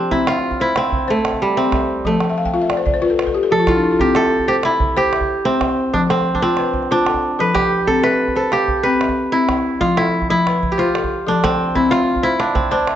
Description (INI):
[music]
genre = west african traditional, West African string and xylophone music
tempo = 124 BPM (dotted quarters)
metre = 12/8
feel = straight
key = C major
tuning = A4 = 441 Hz
[part]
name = kora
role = melody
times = 0.0-13.0 s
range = G3 to B4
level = -17 LUFS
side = right 2 dB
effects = none
[part]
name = balafon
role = arpeggios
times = 0.0-13.0 s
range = F3 to G5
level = -19 LUFS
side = left 4 dB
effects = none
[part]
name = calabash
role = percussion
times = 0.1-13.0 s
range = none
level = -24 LUFS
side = right 2 dB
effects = none
[sound]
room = wet recital hall reverb, RT60 1.8 s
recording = nothing above 8.0 kHz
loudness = -15 LUFS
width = side -10 dB against mid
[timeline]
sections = 0.1-13.0 A section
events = balafon fill 2.3-4.0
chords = 0.1 C; 2.1 F; 4.0 C; 5.9 F; 7.9 C; 9.8 F; 11.8 C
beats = | 0.11 0.60 1.08 1.57 | 2.05 2.54 3.02 3.51 | 3.99 4.48 4.96 5.45 | 5.93 6.42 6.90 7.39 | 7.87 8.36 8.84 9.33 | 9.81 10.30 10.78 11.27 | 11.75 12.23 12.72